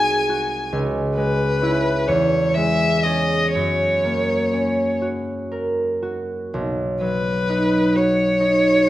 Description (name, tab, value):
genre	classical, romantic duo for violin and harp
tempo	39-46 BPM (dotted quarters)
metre	6/8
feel	rubato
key	B major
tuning	A4 = 440 Hz
part	rich violin	melody	0.0-8.9 s	B4 to G#5	-20 LUFS	left 1 dB	none
part	concert harp	accompaniment	0.0-8.9 s	B1 to A#4	-20 LUFS	right 1 dB	none
room	wet recital hall reverb, RT60 1.3 s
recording	none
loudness	-18 LUFS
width	side -14 dB against mid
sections	0.0-8.9 A section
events	none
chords	0.0 G#7/B#; 0.7 C#m; 2.1 C#m/E; 3.5 F#; 6.5 B